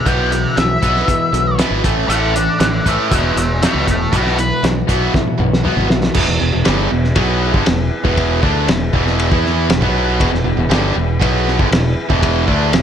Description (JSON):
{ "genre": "classic rock", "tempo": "118 BPM", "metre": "4/4", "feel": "straight", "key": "E major", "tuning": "A4 = 439 Hz", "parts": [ { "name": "octave-fuzz lead guitar", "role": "melody", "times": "0.0-4.6 s", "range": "E4 to G5", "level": "-19 LUFS", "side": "left 1 dB", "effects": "wah, distortion" }, { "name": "fingerpicked twelve-string acoustic guitar", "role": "accompaniment", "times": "0.0-6.2 s", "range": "E2 to F#4", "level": "-27 LUFS", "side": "left 4 dB", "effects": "none" }, { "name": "tonewheel organ", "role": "sustained chords", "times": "0.0-12.8 s", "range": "B3 to B4", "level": "-28 LUFS", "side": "equal", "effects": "none" }, { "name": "distorted electric guitar", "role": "riff", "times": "0.0-12.8 s", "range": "E2 to E4", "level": "-21 LUFS", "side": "left 11 dB", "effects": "overdrive" }, { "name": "distorted electric guitar", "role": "riff", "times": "0.0-12.8 s", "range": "E2 to E4", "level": "-20 LUFS", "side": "right 12 dB", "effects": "overdrive" }, { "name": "growling fingered electric bass", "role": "bass", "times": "0.1-12.8 s", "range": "E1 to E2", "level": "-19 LUFS", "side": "equal", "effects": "overdrive" }, { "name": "cloth-damped thuddy drum kit", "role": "drums", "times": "0.1-12.8 s", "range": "crash cymbal, hi-hat, kick drum, ride cymbal, snare drum, toms", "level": "-18 LUFS", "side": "equal", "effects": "none" } ], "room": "light reverb, small room reverb", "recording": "none", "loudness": "-13 LUFS", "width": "side -9 dB against mid", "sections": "0.0-6.2 A section; 6.2-12.8 B section", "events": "lead electric guitar solo 0.0-6.2; drum fill 5.1-6.2", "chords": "0.1 Bsus4; 1.8 A; 3.1 E; 4.1 Bsus4; 6.2 E" }